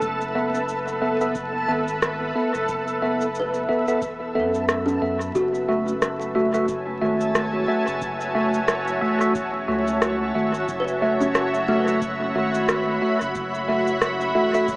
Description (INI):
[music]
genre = ambient dub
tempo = 90 BPM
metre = 4/4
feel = swing 58% on 16ths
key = F# minor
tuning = A4 = 440 Hz
[part]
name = granular cloud pad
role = sustained chords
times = 0.0-14.8 s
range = F#4 to B5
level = -26 LUFS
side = equal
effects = built-in reverb
[part]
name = kalimba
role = arpeggios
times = 0.0-13.5 s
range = A3 to B4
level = -29 LUFS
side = equal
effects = tape echo
[part]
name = soft dub sub bass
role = bass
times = 0.0-14.8 s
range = E1 to F#2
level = -35 LUFS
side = equal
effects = none
[part]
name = electronic cabasa and rim click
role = drums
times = 0.0-14.8 s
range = none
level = -28 LUFS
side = equal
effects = dub echo
[part]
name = electronic kick drum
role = drums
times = 0.0-14.8 s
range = none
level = -38 LUFS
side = equal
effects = none
[part]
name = backwards swelling texture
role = texture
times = 0.0-5.4 s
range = A4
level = -29 LUFS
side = equal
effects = built-in reverb
[part]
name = tine electric piano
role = stabs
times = 0.4-14.7 s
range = A3 to E5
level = -23 LUFS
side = equal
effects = phaser, dub echo
[sound]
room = light reverb, digital ambience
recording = echo-heavy mix, vinyl crackle, small speaker sound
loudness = -20 LUFS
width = side -23 dB against mid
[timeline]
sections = 0.0-5.4 A section; 5.4-14.8 B section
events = none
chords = 0.0 F#m7